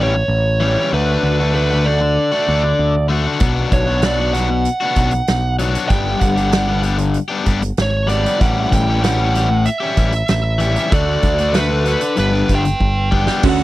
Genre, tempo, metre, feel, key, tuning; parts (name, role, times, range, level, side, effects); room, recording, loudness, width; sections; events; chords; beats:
indie rock; 96 BPM; 4/4; straight; A4 = 440 Hz
smooth overdriven lead guitar; melody; 0.0-13.6 s; B4 to G5; -20 LUFS; right 3 dB; tape echo
cranked stack guitar; riff; 0.0-13.6 s; G2 to A4; -19 LUFS; left 4 dB; overdrive
growling picked electric bass; bass; 0.0-13.6 s; G1 to D2; -18 LUFS; equal; overdrive
loose indie drum kit; drums; 3.4-13.6 s; crash cymbal, hi-hat, kick drum, snare drum; -19 LUFS; equal
electric guitar through a small old amp; riff; 13.4-13.6 s; D3 to A4; -15 LUFS; right 10 dB; ensemble chorus
little or no reverb; dry, close 1970s-style studio recording; -14 LUFS; side -16 dB against mid
0.0-13.4 A section
drum fill 12.8-13.4
0.0 A7; 0.9 D6; 3.4 Bm; 5.9 Gmaj7; 8.4 A7; 10.9 D6; 12.2 G
0.30 | 0.92 1.55 2.17 2.79 | 3.42 4.04 4.66 5.29 | 5.91 6.54 7.16 7.79 | 8.42 9.04 9.67 10.30 | 10.93 11.55 12.18 12.81 | 13.44